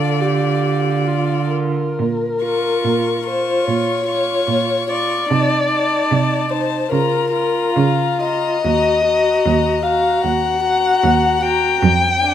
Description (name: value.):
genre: classical, slow romantic movement for string quartet.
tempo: 73 BPM.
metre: 4/4.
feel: uneven beats, rubato.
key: Bb minor.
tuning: A4 = 440 Hz.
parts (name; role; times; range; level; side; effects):
rich violin; melody; 0.0-12.3 s; D5 to Db6; -24 LUFS; left 10 dB; none.
dark violin; second line; 0.0-12.3 s; F4 to G5; -18 LUFS; left 4 dB; none.
dark viola; accompaniment; 0.0-12.3 s; D4 to A4; -22 LUFS; right 2 dB; none.
rich cello; bass; 0.0-12.3 s; Eb2 to D3; -20 LUFS; right 5 dB; none.
room: moderate recital hall reverb, RT60 1.8 s.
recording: close, detailed microphones.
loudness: -15 LUFS.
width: side -10 dB against mid.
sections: 0.0-2.0 A section; 2.0-12.3 B section.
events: none.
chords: 0.0 Dm; 2.0 Bbm; 5.3 Adim/C; 6.9 Bbm/Db; 8.6 Ebm; 11.8 Ddim/F.